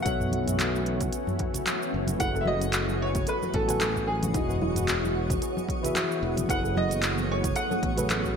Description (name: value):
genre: sunset chillout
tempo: 112 BPM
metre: 4/4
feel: swing 55% on 16ths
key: F# dorian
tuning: A4 = 439 Hz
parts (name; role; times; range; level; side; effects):
- warm concert grand piano; melody; 0.0-8.4 s; G#4 to F#5; -32 LUFS; right 1 dB; analog chorus, ping-pong delay
- tine electric piano; accompaniment; 0.0-8.4 s; E3 to G#5; -33 LUFS; moving between left 5 dB and right 6 dB; auto-pan, ping-pong delay
- shimmering ambient pad; sustained chords; 0.0-8.4 s; E3 to F#4; -32 LUFS; left 1 dB; chorus, built-in reverb
- modern bright fingered electric bass; bass; 0.1-8.3 s; E1 to B1; -31 LUFS; equal; tube saturation
- deep house drum kit; drums; 0.1-8.3 s; handclaps, hi-hat, shaker, toms; -31 LUFS; right 1 dB; gated reverb
- electronic kick drum; drums; 0.1-8.3 s; none; -32 LUFS; equal; none
- congas; percussion; 0.3-8.2 s; none; -37 LUFS; left 1 dB; none
- soft round pluck; arpeggios; 2.2-8.2 s; D#4 to B4; -37 LUFS; right 3 dB; ensemble chorus, ping-pong delay
- twinkling granular texture; texture; 2.9-8.4 s; C#5 to D#6; -40 LUFS; left 1 dB; built-in reverb
room: moderate plate reverb, RT60 1.7 s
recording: bright 1980s-style digital production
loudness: -24 LUFS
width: side -6 dB against mid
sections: 0.0-8.4 A section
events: none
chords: 0.0 B9sus4; 2.2 F#m11; 4.3 Emaj9; 6.5 F#m11